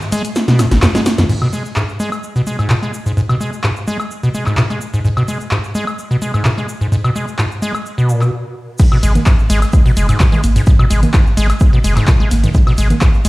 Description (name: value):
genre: acid house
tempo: 128 BPM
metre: 4/4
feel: straight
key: G# minor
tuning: A4 = 442 Hz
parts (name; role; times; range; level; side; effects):
- big rock drum kit; drums; 0.0-1.2, 8.8-13.3 s; hi-hat, shaker, snare drum; -34 LUFS; equal; none
- punchy analog drum machine; drums; 0.0-13.3 s; cabasa, congas, crash cymbal, handclaps, hi-hat, snare drum, woodblock; -20 LUFS; equal; overdrive
- acid bass, square; riff; 0.1-13.3 s; G#1 to G#3; -16 LUFS; equal; tube saturation, sidechain pumping, dub echo
- electronic kick drum; drums; 8.8-13.1 s; none; -11 LUFS; equal; overdrive
- warm sub bass; bass; 9.0-13.3 s; F#1 to G#1; -14 LUFS; equal; sidechain pumping
room: moderate studio reverb, RT60 0.6 s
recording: played on a big sound system in a bare room, stone room reverb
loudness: -12 LUFS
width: side -20 dB against mid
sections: 0.0-1.3 A section; 1.3-8.8 B section; 8.8-13.3 A section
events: break 0.0-1.3; drop 0.0-1.3, 8.8-13.3; drum fill 0.4-1.3; stop 8.3-8.8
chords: 0.0 G#m7; 1.3 N.C.